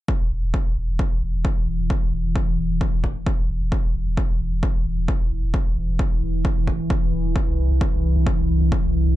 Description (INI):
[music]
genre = driving peak-time techno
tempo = 132 BPM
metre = 4/4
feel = straight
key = unclear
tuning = A4 = 440 Hz
[part]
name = deep dark ambient pad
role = drone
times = 0.9-9.2 s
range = E3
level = -28 LUFS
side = equal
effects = chorus, built-in reverb, sidechain pumping
[part]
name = electronic kick drum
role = drums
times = 0.1-8.8 s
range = none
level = -22 LUFS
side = equal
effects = none
[part]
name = saturated sub bass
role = bass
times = 0.2-9.2 s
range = E1 to C2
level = -23 LUFS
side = equal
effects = overdrive, sidechain pumping, low-pass filter
[sound]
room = little or no reverb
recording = nothing above 10.3 kHz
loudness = -20 LUFS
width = side -15 dB against mid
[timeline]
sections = 0.1-9.2 A section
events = none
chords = 0.1 N.C.; 7.4 C